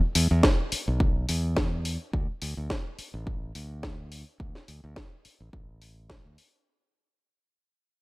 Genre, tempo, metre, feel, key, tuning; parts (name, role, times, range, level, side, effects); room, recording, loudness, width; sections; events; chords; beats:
nu-disco, nu disco; 106 BPM; 4/4; swing 54% on 16ths; A4 = 443 Hz
modern bright fingered electric bass; bass; 0.2-6.4 s; A1 to E2; -28 LUFS; equal; transformer saturation
house drum kit; drums; 0.2-6.5 s; hi-hat, snare drum; -29 LUFS; left 1 dB
electronic kick drum; drums; 0.4-6.2 s; -26 LUFS; equal
little or no reverb; dry, gritty hardware recording; -25 LUFS; side -22 dB against mid
0.0-6.7 A section
fade-out 0.0-6.7
0.44 1.00 1.57 | 2.13 2.70 3.27 3.83 | 4.40 4.96 5.53 6.10